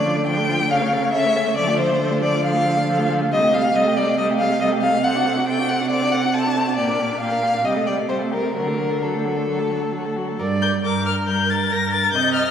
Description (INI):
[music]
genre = quick classical-period movement for string quartet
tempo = 138 BPM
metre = 4/4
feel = straight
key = D minor, G minor from 3.3 s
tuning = A4 = 440 Hz
[part]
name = rich violin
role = melody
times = 0.0-12.5 s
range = D4 to Bb6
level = -26 LUFS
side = left 5 dB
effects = none
[part]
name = rich violin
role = second line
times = 0.0-12.4 s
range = A4 to A5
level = -21 LUFS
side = left 2 dB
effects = none
[part]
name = rich viola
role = accompaniment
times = 0.0-12.5 s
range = F3 to Eb5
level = -26 LUFS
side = right 1 dB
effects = none
[part]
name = clear cello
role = bass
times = 0.0-12.5 s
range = G2 to D3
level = -24 LUFS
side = right 4 dB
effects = none
[sound]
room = wet scoring stage reverb, RT60 2.2 s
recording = heard from further back in the room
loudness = -18 LUFS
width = side -8 dB against mid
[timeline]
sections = 0.0-10.4 A section; 10.4-12.5 B section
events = none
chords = 0.0 Dm; 0.7 A/C#; 1.6 Dm; 3.3 Cm6; 5.0 D7/C; 6.8 Gm/Bb; 7.6 Cm13; 8.6 D; 10.4 Gm